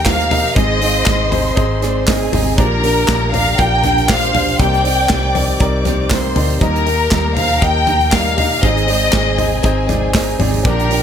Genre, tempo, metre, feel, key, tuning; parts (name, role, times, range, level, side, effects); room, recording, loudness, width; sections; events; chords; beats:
piano-driven pop; 119 BPM; 4/4; swing 56% on 16ths; A4 = 440 Hz
warm studio violin section; melody; 0.0-11.0 s; Bb4 to G5; -17 LUFS; left 2 dB
warm studio violin section; second line; 0.0-11.0 s; G4 to D6; -25 LUFS; left 2 dB
warm upright piano; accompaniment; 0.0-11.0 s; Ab2 to F5; -21 LUFS; left 1 dB
fingerpicked steel-string acoustic guitar; riff; 0.0-11.0 s; Ab2 to Ab4; -24 LUFS; right 10 dB
vintage muted fingered electric bass; bass; 0.0-11.0 s; Ab1 to Eb2; -19 LUFS; equal
modern studio drum kit; drums; 0.1-11.0 s; handclaps, hi-hat, kick drum, snare drum, toms; -18 LUFS; equal
light reverb; -12 LUFS; side -8 dB against mid
0.0-11.0 A section
0.0 Eb; 0.6 Ab; 2.6 Bb6; 4.6 Cm7; 6.6 Eb; 8.6 Ab
0.06 | 0.56 1.07 1.57 2.08 | 2.58 3.09 3.59 4.09 | 4.60 5.10 5.61 6.11 | 6.62 7.12 7.62 8.13 | 8.63 9.14 9.64 10.14 | 10.65